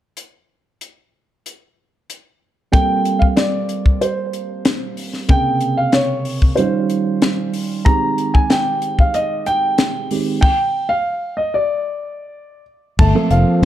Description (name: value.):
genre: electric jazz fusion.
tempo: 94 BPM.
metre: 4/4.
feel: straight.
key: G minor.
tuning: A4 = 439 Hz.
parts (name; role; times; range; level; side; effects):
crisp fusion drum kit; drums; 0.2-13.5 s; crash cymbal, hi-hat, kick drum, snare drum; -16 LUFS; left 1 dB; none.
dark concert grand piano; melody; 2.7-13.7 s; C5 to Bb5; -19 LUFS; equal; none.
dark baby grand piano; accompaniment; 2.7-13.6 s; C3 to A4; -21 LUFS; right 4 dB; none.
breathy trombone; second line; 13.0-13.7 s; F3 to A3; -20 LUFS; left 4 dB; none.
fingered electric bass; bass; 13.0-13.7 s; F1 to G1; -14 LUFS; left 1 dB; none.
room: light reverb.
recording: dark, warm production.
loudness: -15 LUFS.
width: side -12 dB against mid.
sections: 0.2-2.7 A section; 2.7-13.0 B section.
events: stop 10.4-13.0.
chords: 0.2 N.C.; 2.7 Gm11; 5.3 Bbm9; 6.6 Eb9; 7.9 Abmaj7; 10.4 N.C.; 13.0 Gm11.